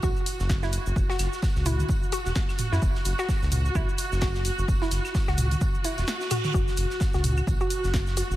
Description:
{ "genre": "minimal techno", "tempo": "129 BPM", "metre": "4/4", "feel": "swing 58% on 16ths", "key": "unclear", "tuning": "A4 = 439 Hz", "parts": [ { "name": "hollow square pluck", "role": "riff", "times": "0.0-8.2 s", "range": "E4 to F#4", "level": "-34 LUFS", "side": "equal", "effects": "chorus, phaser, sidechain pumping, analog delay" }, { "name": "round analog bass", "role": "bass", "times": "0.0-8.4 s", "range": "E1 to F#2", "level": "-27 LUFS", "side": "equal", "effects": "tube saturation, sidechain pumping" }, { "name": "electronic kick drum", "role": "drums", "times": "0.0-8.0 s", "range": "none", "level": "-27 LUFS", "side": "equal", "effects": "none" }, { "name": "tight metal drum kit", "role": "drums", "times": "0.0-8.3 s", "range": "hi-hat, snare drum, tambourine", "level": "-42 LUFS", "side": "right 2 dB", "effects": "sidechain pumping on hats, high-pass filter on hats, high-pass filter on snare, sidechain pumping on perc, high-pass filter on perc, high-pass filter on room" }, { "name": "cabasa", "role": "percussion", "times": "0.0-8.4 s", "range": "none", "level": "-40 LUFS", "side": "right 3 dB", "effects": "none" }, { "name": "warm symphonic string section", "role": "texture", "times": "0.0-8.4 s", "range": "F#4", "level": "-33 LUFS", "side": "right 1 dB", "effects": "sidechain pumping" }, { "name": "house drum kit", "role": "drums", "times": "0.3-8.3 s", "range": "hi-hat, snare drum", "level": "-33 LUFS", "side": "left 1 dB", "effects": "none" }, { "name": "electronic claves and toms", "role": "percussion", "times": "1.2-7.5 s", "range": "none", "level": "-32 LUFS", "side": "right 1 dB", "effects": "analog delay" }, { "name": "reverse cymbal", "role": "sound effects", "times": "5.9-6.5 s", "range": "none", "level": "-39 LUFS", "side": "right 6 dB", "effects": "none" } ], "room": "light reverb, small room ambience", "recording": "none", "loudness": "-23 LUFS", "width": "side -15 dB against mid", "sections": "0.0-8.4 A section", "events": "reverse cymbal 5.9-6.5", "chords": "0.0 F#5" }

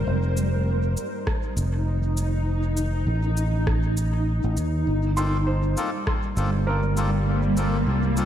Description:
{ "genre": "ambient dub", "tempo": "100 BPM", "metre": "4/4", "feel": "swing 57% on 16ths", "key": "unclear", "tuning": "A4 = 441 Hz", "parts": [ { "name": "granular cloud pad", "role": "sustained chords", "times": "0.0-8.3 s", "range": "G3 to C5", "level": "-28 LUFS", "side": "equal", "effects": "built-in reverb, lush chorus" }, { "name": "fingered electric bass", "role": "bass", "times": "0.0-8.3 s", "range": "F1 to Eb2", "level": "-23 LUFS", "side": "equal", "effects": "tube saturation" }, { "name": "electronic shaker and rim click", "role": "drums", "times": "0.4-8.3 s", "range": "none", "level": "-35 LUFS", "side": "right 1 dB", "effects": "dub echo" }, { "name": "electronic kick drum", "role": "drums", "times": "1.3-6.2 s", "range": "none", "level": "-28 LUFS", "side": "equal", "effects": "none" }, { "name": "felt-muted upright piano", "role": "arpeggios", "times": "5.2-8.3 s", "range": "F4 to C6", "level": "-32 LUFS", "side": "right 4 dB", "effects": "dub echo" }, { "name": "melodica", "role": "stabs", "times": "5.2-8.3 s", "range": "Bb3 to A4", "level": "-31 LUFS", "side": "left 2 dB", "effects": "dub echo" } ], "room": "light reverb", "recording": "none", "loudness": "-21 LUFS", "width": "side -10 dB against mid", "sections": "0.0-8.3 A section", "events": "none", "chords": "0.1 F7; 4.9 Gm11" }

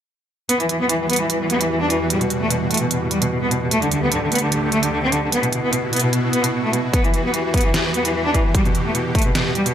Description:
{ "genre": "heavy wobble dubstep", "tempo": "149 BPM", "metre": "4/4", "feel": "swing 54% on 16ths, half-time", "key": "E minor", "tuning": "A4 = 441 Hz", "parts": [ { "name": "rich cello", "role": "melody", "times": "0.5-9.7 s", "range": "B2 to D4", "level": "-20 LUFS", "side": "equal", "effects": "ping-pong delay" }, { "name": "supersaw pad", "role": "sustained chords", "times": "0.5-9.7 s", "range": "D2 to G4", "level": "-24 LUFS", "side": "right 1 dB", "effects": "phaser, sidechain pumping" }, { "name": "dubstep drum kit", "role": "drums", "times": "0.5-9.7 s", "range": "hi-hat, snare drum", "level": "-22 LUFS", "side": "right 2 dB", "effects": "none" }, { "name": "electronic kick drum", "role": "drums", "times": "6.9-9.2 s", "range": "none", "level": "-19 LUFS", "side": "equal", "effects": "none" } ], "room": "light reverb", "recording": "none", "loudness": "-17 LUFS", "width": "side -9 dB against mid", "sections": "0.5-9.7 A section", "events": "none", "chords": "0.5 Emadd9; 3.7 Dsus4; 5.3 Bsus4; 6.9 Emadd9" }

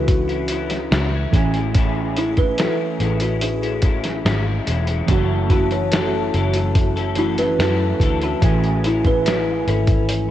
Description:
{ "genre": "indie pop, bedroom pop", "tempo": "72 BPM", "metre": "4/4", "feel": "straight", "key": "A major", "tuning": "A4 = 440 Hz", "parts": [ { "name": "electric guitar through a small old amp", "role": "accompaniment", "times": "0.0-10.3 s", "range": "A2 to A4", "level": "-26 LUFS", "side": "left 9 dB", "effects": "ensemble chorus, warbly pitch drift" }, { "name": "warbly lo-fi synth keys", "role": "accompaniment", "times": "0.0-10.3 s", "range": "E3 to G#5", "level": "-26 LUFS", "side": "right 7 dB", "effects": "chorus, cassette tape" }, { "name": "vintage muted fingered electric bass", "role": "bass", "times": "0.0-10.3 s", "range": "E1 to F#2", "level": "-22 LUFS", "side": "equal", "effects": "none" }, { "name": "buzzing kalimba", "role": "melody", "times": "0.1-10.3 s", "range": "E4 to C#5", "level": "-24 LUFS", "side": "left 1 dB", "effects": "analog chorus, cassette tape, tape echo" }, { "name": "lo-fi sampler-style drum kit", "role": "drums", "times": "0.1-10.3 s", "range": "hi-hat, kick drum, snare drum", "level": "-20 LUFS", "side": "equal", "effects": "cassette tape" } ], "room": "light reverb", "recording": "home recording on cassette", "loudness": "-17 LUFS", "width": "side -12 dB against mid", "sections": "0.0-10.3 A section", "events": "none", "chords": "0.0 Dmaj9; 1.3 Amaj7; 5.1 F#m7; 8.4 Amaj7" }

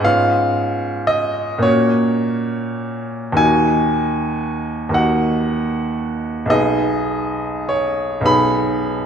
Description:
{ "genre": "classical, romantic nocturne for solo piano", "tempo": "33-40 BPM (dotted quarters)", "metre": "6/8", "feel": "rubato", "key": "unclear", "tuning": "A4 = 440 Hz", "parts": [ { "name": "clear baby grand piano", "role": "solo", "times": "0.0-9.1 s", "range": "B1 to B5", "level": "-16 LUFS", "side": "equal", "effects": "none" } ], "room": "moderate concert hall reverb, RT60 2.2 s", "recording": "none", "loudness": "-16 LUFS", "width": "side -7 dB against mid", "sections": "0.0-9.1 A section", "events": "none", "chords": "0.1 C#7/G#; 1.7 F#/A#; 3.4 D#m; 6.5 G#m/B" }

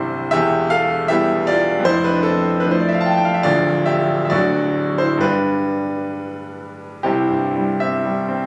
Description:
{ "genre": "classical, romantic character piece for solo piano", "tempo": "57-79 BPM", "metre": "2/4", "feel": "rubato", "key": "C major", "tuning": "A4 = 440 Hz", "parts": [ { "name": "clear concert grand piano", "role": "solo", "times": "0.0-8.5 s", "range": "C1 to A5", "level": "-18 LUFS", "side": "equal", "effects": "none" } ], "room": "moderate recital hall reverb, RT60 1.4 s", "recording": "recorded on a phone in the room, studio ambience, compression", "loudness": "-18 LUFS", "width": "mono", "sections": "0.0-7.0 A section; 7.0-8.5 B section", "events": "none", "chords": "0.3 Em; 1.9 Fmaj7; 3.5 Dm; 4.3 D; 5.2 G; 7.0 C" }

